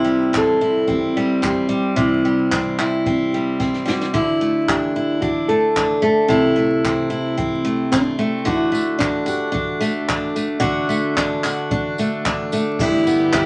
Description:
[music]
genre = acoustic pop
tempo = 111 BPM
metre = 4/4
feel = straight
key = unclear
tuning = A4 = 440 Hz
[part]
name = nylon-string guitar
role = melody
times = 0.0-13.5 s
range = D4 to A4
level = -25 LUFS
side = equal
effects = none
[part]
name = picked steel-string acoustic guitar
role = accompaniment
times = 0.0-13.5 s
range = G2 to F#4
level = -21 LUFS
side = equal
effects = none
[part]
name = jazz brush drum kit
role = drums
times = 0.3-13.5 s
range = crash cymbal, handclaps, kick drum, snare drum, tambourine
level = -28 LUFS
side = equal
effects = none
[part]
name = warm studio string section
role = sustained chords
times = 12.8-13.5 s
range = D3 to G4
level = -29 LUFS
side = equal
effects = none
[sound]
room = moderate large studio reverb, RT60 0.9 s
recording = vinyl crackle, nothing above 10.4 kHz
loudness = -19 LUFS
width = mono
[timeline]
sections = 0.0-12.8 A section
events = drum fill 3.6-4.1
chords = 0.0 C; 4.1 Dadd9; 6.3 Am/C; 8.5 D; 12.8 G6

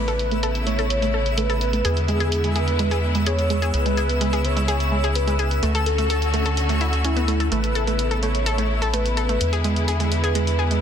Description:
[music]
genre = progressive house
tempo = 127 BPM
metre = 4/4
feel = straight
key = A major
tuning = A4 = 439 Hz
[part]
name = wide unison lead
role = melody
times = 0.0-10.8 s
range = E4 to C#5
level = -26 LUFS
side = equal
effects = wide subtle chorus, digital delay
[part]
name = clear studio string section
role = sustained chords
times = 0.0-10.8 s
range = C#3 to F#4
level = -27 LUFS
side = equal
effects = none
[part]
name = analog pluck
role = arpeggios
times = 0.0-10.8 s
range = G#3 to A4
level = -26 LUFS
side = right 1 dB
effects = chorus, digital delay
[part]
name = round analog bass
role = bass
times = 0.0-10.8 s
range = A1 to E2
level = -23 LUFS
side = equal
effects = none
[part]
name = twinkling granular texture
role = texture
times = 0.3-10.8 s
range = E6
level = -34 LUFS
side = equal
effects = built-in reverb
[part]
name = electronic hi-hat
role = drums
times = 0.1-10.8 s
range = none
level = -30 LUFS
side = equal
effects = overdrive, low-pass filter on hats, low-pass filter on perc, low-pass filter on snare
[sound]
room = light reverb, small room ambience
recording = dense, heavily limited modern master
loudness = -19 LUFS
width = side -8 dB against mid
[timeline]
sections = 0.0-10.8 A section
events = filter sweep on synth pluck 0.0-10.8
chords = 0.0 Aadd9; 1.8 E7; 3.7 C#m7; 5.6 Dmaj7; 7.5 Aadd9; 9.4 E7

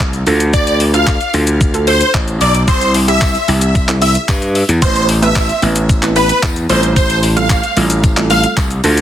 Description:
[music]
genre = dance-pop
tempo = 112 BPM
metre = 4/4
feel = straight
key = unclear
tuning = A4 = 441 Hz
[part]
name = hollow square pluck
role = accompaniment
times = 0.0-9.0 s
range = G3 to B4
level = -20 LUFS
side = right 4 dB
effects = chorus, sidechain pumping
[part]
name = gritty slap bass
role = bass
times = 0.0-9.0 s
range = A1 to G2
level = -14 LUFS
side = equal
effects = overdrive, sidechain pumping
[part]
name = detuned 8-bit digital drum machine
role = drums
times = 0.0-9.0 s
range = handclaps, hi-hat, kick drum, shaker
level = -16 LUFS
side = left 1 dB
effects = none
[part]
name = supersaw chords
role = melody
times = 0.5-8.4 s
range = B4 to F5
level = -16 LUFS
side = equal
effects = phaser, sidechain pumping, digital delay
[part]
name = tambourine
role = percussion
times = 2.7-9.0 s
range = none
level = -32 LUFS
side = left 12 dB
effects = none
[sound]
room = little or no reverb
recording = dense, heavily limited modern master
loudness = -10 LUFS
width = side -11 dB against mid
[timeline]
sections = 0.0-9.0 A section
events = none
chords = 0.3 Dm; 2.7 C; 4.8 Amadd9; 6.7 Fadd9/A

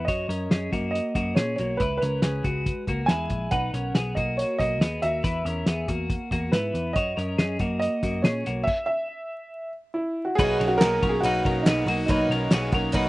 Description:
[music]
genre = jangly indie pop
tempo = 140 BPM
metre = 4/4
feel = straight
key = B major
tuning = A4 = 440 Hz
[part]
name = warm upright piano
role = melody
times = 0.0-12.5 s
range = D#4 to G#5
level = -27 LUFS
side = right 1 dB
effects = none
[part]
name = twelve-string electric guitar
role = arpeggios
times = 0.0-13.1 s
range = G#3 to C#5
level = -29 LUFS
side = left 2 dB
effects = slapback echo
[part]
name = vintage muted picked electric bass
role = bass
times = 0.0-13.1 s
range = A#1 to A#2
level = -29 LUFS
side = equal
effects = none
[part]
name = cloth-damped thuddy drum kit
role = drums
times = 0.1-13.0 s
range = crash cymbal, hi-hat, kick drum, ride cymbal, snare drum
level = -26 LUFS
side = equal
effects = none
[part]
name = picked twelve-string acoustic guitar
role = accompaniment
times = 10.4-13.1 s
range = B2 to F#4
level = -28 LUFS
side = right 2 dB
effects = none
[part]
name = group handclap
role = percussion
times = 10.8-12.6 s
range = none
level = -37 LUFS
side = left 2 dB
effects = none
[sound]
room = little or no reverb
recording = recorded outdoors, with no room sound, vinyl crackle, nothing above 10.7 kHz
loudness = -22 LUFS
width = side -18 dB against mid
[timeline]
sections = 0.0-10.4 A section; 10.4-13.1 B section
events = stop 8.7-10.4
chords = 0.1 F#; 1.8 C#m; 3.5 Badd9; 5.2 Esus2; 7.0 F#; 8.7 N.C.; 10.4 Bmaj7

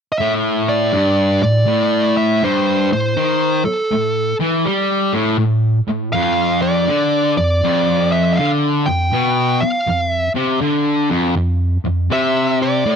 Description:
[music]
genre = rock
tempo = 81 BPM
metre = 4/4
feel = swing 65% on 8ths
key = unclear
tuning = A4 = 438 Hz
[part]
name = fuzz lead guitar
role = melody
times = 0.1-13.0 s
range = A4 to G5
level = -18 LUFS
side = right 1 dB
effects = distortion
[part]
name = fuzz guitar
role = riff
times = 0.2-13.0 s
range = F2 to G3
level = -16 LUFS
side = left 1 dB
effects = distortion
[sound]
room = digital ambience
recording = dry, close 1970s-style studio recording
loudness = -14 LUFS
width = side -7 dB against mid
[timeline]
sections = 0.2-13.0 A section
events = none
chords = 0.2 N.C.; 6.1 F5; 12.1 Amadd11

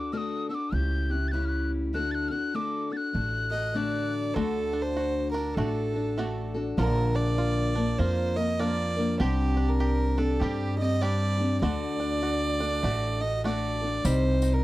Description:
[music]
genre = acoustic folk duo or small band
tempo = 99 BPM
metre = 4/4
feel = swing 62% on 8ths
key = unclear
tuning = A4 = 440 Hz
[part]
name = breathy mellow tin whistle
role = melody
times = 0.0-4.1 s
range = D6 to A6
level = -32 LUFS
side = left 2 dB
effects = none
[part]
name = picked steel-string acoustic guitar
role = accompaniment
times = 0.0-14.6 s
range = Bb2 to Bb4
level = -30 LUFS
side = left 3 dB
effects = none
[part]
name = upright bass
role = bass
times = 0.7-14.6 s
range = A1 to G2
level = -28 LUFS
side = equal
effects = none
[part]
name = rich fiddle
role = second line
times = 3.5-14.6 s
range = G4 to Eb5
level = -30 LUFS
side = right 3 dB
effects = none
[part]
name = bluegrass banjo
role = arpeggios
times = 4.4-14.6 s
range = D3 to G4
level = -37 LUFS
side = right 3 dB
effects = none
[part]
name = tambourine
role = percussion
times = 14.0-14.5 s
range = none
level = -40 LUFS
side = left 9 dB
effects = none
[sound]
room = little or no reverb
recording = dry, close 1970s-style studio recording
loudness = -25 LUFS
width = side -16 dB against mid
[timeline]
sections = 0.0-4.4 A section; 4.4-14.6 B section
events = fiddle solo 4.4-14.6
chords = 0.0 D; 0.7 A7/C#; 1.9 D; 6.8 Bb; 9.2 Csus2; 11.6 D; 14.1 Cm

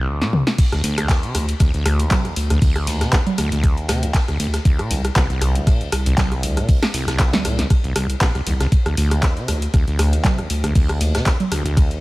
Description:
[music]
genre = acid house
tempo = 118 BPM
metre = 4/4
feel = swing 55% on 16ths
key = unclear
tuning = A4 = 440 Hz
[part]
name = acid bass, saw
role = riff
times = 0.0-12.0 s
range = Bb1 to C3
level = -22 LUFS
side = equal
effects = overdrive
[part]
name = punchy analog drum machine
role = drums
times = 0.2-12.0 s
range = congas, crash cymbal, handclaps, hi-hat, rim click, snare drum, toms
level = -22 LUFS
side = equal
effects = none
[part]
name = electronic kick drum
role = drums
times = 0.6-11.9 s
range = none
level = -16 LUFS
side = equal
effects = none
[part]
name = vintage brush drum kit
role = drums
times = 0.6-11.9 s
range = hi-hat, ride cymbal, snare drum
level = -34 LUFS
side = left 2 dB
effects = sidechain pumping on cymbals, high-pass filter on cymbals, sidechain pumping on hats, high-pass filter on hats, high-pass filter on snare, high-pass filter on room
[part]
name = saturated sub bass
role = bass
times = 0.8-11.7 s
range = C2 to D2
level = -21 LUFS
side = equal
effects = tube saturation, sidechain pumping
[sound]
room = studio reverb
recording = none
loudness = -16 LUFS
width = side -20 dB against mid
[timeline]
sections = 0.6-12.0 A section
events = break 0.0-0.6; drum fill 0.2-0.6; drop 0.6-12.0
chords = 0.0 Csus2; 0.6 Cmadd9/D; 4.7 C7(no3); 8.7 Cmadd9/D

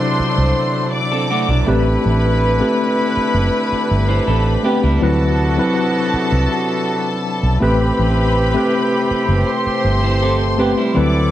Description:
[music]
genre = soul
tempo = 81 BPM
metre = 4/4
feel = straight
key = A dorian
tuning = A4 = 440 Hz
[part]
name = warm studio string section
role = second line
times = 0.0-11.3 s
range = A4 to D6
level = -22 LUFS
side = left 2 dB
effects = none
[part]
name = tine electric piano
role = accompaniment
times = 0.0-11.3 s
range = C3 to C5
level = -19 LUFS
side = left 2 dB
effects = medium stereo tremolo
[part]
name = overdriven tonewheel organ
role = sustained chords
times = 0.0-11.3 s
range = C3 to G4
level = -27 LUFS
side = left 1 dB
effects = wide subtle chorus
[part]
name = mellow horn section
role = stabs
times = 0.0-11.3 s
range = B2 to B4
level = -23 LUFS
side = right 5 dB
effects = none
[part]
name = vintage muted fingered electric bass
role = bass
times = 0.2-11.3 s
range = F#1 to D2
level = -17 LUFS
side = equal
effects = none
[part]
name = electric guitar at the edge of break-up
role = riff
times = 1.1-5.2, 10.0-11.1 s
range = F#3 to C5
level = -22 LUFS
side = right 7 dB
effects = none
[sound]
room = little or no reverb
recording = dry, close 1970s-style studio recording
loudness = -14 LUFS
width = side -13 dB against mid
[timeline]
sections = 0.0-11.3 A section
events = none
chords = 0.0 D13; 1.7 Am9; 5.0 D13; 7.6 Am9

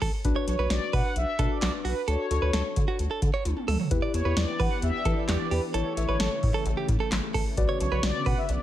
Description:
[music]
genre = synth-pop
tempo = 131 BPM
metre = 4/4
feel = straight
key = E dorian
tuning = A4 = 440 Hz
[part]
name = direct-recorded clean electric guitar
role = second line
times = 0.0-8.4 s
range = F#4 to D5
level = -33 LUFS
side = right 6 dB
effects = digital delay
[part]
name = rubbery square bass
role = bass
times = 0.0-8.6 s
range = A1 to E3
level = -28 LUFS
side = equal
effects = none
[part]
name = electro analog drum machine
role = drums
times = 0.0-8.6 s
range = handclaps, hi-hat, kick drum, snare drum, toms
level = -28 LUFS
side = equal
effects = gated reverb
[part]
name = muted felt-like synth keys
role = accompaniment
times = 0.2-8.6 s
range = D4 to E5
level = -33 LUFS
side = left 5 dB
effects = chorus
[part]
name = mellow synth brass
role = melody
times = 0.5-8.6 s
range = B4 to F#5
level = -32 LUFS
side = equal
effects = chorus
[part]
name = soft string machine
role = sustained chords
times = 3.9-8.6 s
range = C#3 to G4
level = -35 LUFS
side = left 1 dB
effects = ensemble chorus
[sound]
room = light reverb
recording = none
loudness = -24 LUFS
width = side -12 dB against mid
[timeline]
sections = 0.0-8.6 A section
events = drum fill 3.5-3.9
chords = 0.2 Bm; 2.1 Dmaj7; 3.9 Em7; 5.7 A; 7.6 Bmadd9

